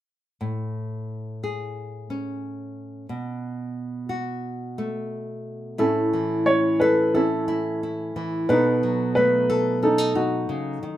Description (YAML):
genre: acoustic folk-pop ballad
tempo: 89 BPM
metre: 4/4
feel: straight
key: A major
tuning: A4 = 440 Hz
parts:
  - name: nylon-string guitar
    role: accompaniment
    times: 0.4-11.0 s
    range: A2 to A4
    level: -25 LUFS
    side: equal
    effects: none
  - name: warm upright piano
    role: melody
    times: 5.8-11.0 s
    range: C#4 to C#5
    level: -22 LUFS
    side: equal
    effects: none
room: moderate studio reverb, RT60 0.6 s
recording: minimal, uncompressed stereo recording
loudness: -22 LUFS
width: side -13 dB against mid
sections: 0.4-5.8 A section; 5.8-11.0 B section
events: none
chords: 0.4 Amaj7; 3.1 B5; 5.8 A; 8.5 B7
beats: | 0.41 1.08 1.76 2.43 | 3.10 3.76 4.43 5.11 | 5.79 6.47 7.14 7.82 | 8.49 9.16 9.83 10.49